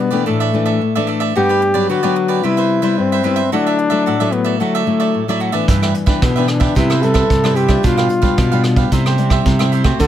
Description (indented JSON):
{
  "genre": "samba and choro",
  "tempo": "111 BPM",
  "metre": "4/4",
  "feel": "straight",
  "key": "G major",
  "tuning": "A4 = 442 Hz",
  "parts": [
    { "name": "warm trombone", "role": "second line", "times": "0.0-10.1 s", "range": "A3 to A4", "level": "-17 LUFS", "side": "left 2 dB", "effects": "none" },
    { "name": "cavaquinho", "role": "accompaniment", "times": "0.0-10.1 s", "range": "D4 to F#5", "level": "-21 LUFS", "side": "right 9 dB", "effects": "none" },
    { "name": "nylon-string guitar", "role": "accompaniment", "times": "0.0-10.1 s", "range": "G2 to F#4", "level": "-18 LUFS", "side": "left 4 dB", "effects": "none" },
    { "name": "nylon-string guitar", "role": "bass", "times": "5.7-10.1 s", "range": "G2 to D3", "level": "-17 LUFS", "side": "right 1 dB", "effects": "none" },
    { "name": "vintage brush drum kit", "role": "drums", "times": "5.7-10.1 s", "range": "hi-hat, kick drum, rim click", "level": "-17 LUFS", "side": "right 1 dB", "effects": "none" }
  ],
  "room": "light reverb",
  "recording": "close, detailed microphones",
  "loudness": "-13 LUFS",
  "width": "side -11 dB against mid",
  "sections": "0.0-10.1 A section",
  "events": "trombone solo 0.0-10.1",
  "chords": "0.3 Dsus2/A; 1.4 Gmaj7; 2.4 Cmaj7; 3.5 Dadd9; 5.7 G6; 6.8 Cmaj7; 7.8 G7/B; 8.9 C"
}